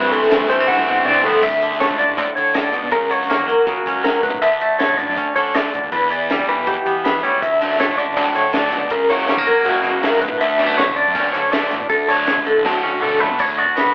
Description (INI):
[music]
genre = math rock and midwest emo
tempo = 160 BPM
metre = 4/4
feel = straight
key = D major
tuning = A4 = 438 Hz
[part]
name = twangy electric guitar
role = accompaniment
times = 0.0-13.9 s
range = D2 to F#4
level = -21 LUFS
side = right 1 dB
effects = none
[part]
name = electric guitar through a small old amp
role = arpeggios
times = 0.0-13.9 s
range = F#4 to F#5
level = -17 LUFS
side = left 1 dB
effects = tremolo
[part]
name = overdriven semi-hollow guitar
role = riff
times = 0.0-1.4, 7.6-13.3 s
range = C3 to E4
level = -22 LUFS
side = equal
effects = none
[part]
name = fuzz fingered electric bass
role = bass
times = 0.0-13.9 s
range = A1 to E3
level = -26 LUFS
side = equal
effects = overdrive
[part]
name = compact cocktail drum kit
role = drums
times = 0.1-13.9 s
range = crash cymbal, hi-hat, kick drum, snare drum, toms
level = -24 LUFS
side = equal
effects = none
[sound]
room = wet stone room reverb, RT60 1.0 s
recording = band playing live in one room, telephone sound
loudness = -14 LUFS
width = side -25 dB against mid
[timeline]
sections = 0.0-1.4 A section; 1.4-13.4 B section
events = drum fill 0.7-1.4, 12.7-13.4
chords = 0.0 Cmaj9#11; 1.4 Dsus2; 2.9 F#7/C#; 4.2 Bm11 (rootless); 5.9 Em7; 7.4 Dmaj9; 8.9 F#7/C#; 10.2 Bm11; 11.9 Dmaj7; 13.4 D6